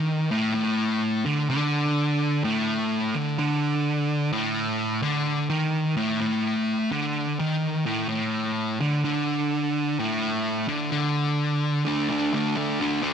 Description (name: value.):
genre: rock.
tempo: 127 BPM.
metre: 4/4.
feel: straight.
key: unclear.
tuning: A4 = 440 Hz.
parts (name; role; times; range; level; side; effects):
fuzz guitar; solo; 0.0-13.1 s; A2 to D4; -23 LUFS; equal; distortion, analog delay.
room: light reverb, digital ambience.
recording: none.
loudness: -23 LUFS.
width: side -7 dB against mid.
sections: 0.0-11.9 A section; 11.9-13.1 B section.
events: none.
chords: 0.0 Asus4; 11.9 D5.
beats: 0.09 | 0.56 1.03 1.50 1.97 | 2.45 2.92 3.39 3.86 | 4.33 4.80 5.28 5.75 | 6.22 6.69 7.16 7.63 | 8.11 8.58 9.05 9.52 | 9.99 10.46 10.93 11.40 | 11.87 12.34 12.81.